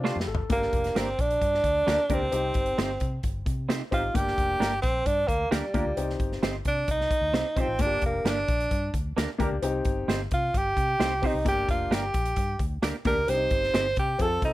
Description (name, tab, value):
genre	uptempo 1960s-style soul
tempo	132 BPM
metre	4/4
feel	straight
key	G minor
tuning	A4 = 441 Hz
part	warm upright piano	accompaniment	0.0-14.5 s	Bb3 to A4	-31 LUFS	left 4 dB	plate reverb
part	semi-hollow electric guitar	stabs	0.0-13.9 s	A3 to C5	-31 LUFS	right 4 dB	analog chorus, plate reverb
part	vintage muted fingered electric bass	bass	0.0-14.5 s	F1 to C3	-32 LUFS	equal	none
part	natural country drum kit	drums	0.1-14.5 s	hi-hat, kick drum, snare drum, toms	-29 LUFS	equal	none
part	clear tenor saxophone	melody	0.5-14.5 s	G3 to C5	-26 LUFS	right 1 dB	plate reverb
room	light reverb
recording	none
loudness	-24 LUFS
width	side -16 dB against mid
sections	0.5-14.5 A section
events	drum fill 0.1-0.5; tenor saxophone solo 0.5-14.5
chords	0.0 Dm7; 0.5 Gm; 2.3 Cm; 4.2 Gm; 6.0 Cm; 7.8 Gm; 9.6 Cm; 11.5 Gm; 13.3 Cm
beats	0.05 | 0.51 0.96 1.42 1.87 | 2.33 2.79 3.24 3.70 | 4.15 4.61 5.06 5.52 | 5.98 6.43 6.89 7.35 | 7.80 8.26 8.71 9.17 | 9.63 10.09 10.54 11.00 | 11.46 11.91 12.37 12.83 | 13.28 13.74 14.20